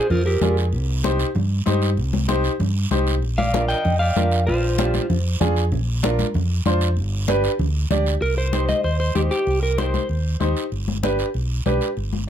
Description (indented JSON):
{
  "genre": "latin, cumbia",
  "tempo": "192 BPM",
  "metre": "4/4",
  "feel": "straight",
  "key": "C harmonic minor from 8.2 s",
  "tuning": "A4 = 440 Hz",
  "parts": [
    { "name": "electric guitar at the edge of break-up", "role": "melody", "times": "0.0-0.6, 3.4-5.1, 8.2-10.1 s", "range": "F4 to G5", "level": "-22 LUFS", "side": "equal", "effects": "spring reverb, slapback echo" },
    { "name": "fingered electric bass", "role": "bass", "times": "0.1-12.3 s", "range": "G1 to G2", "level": "-21 LUFS", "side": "equal", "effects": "none" },
    { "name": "congas", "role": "percussion", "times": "0.1-12.3 s", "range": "none", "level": "-26 LUFS", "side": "left 4 dB", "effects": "none" },
    { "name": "guiro", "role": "percussion", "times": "0.1-12.3 s", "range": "none", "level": "-34 LUFS", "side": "right 6 dB", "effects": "none" },
    { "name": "bright upright piano", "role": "accompaniment", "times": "0.4-11.9 s", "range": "D4 to D5", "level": "-24 LUFS", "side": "right 1 dB", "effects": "none" }
  ],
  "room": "light reverb",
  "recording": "close, detailed microphones",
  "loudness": "-18 LUFS",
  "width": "side -10 dB against mid",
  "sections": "0.0-8.2 A section; 8.2-12.3 B section",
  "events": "none",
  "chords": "0.0 Bb; 0.7 Cm; 3.2 Bb; 7.0 G; 8.2 Cm; 10.7 G"
}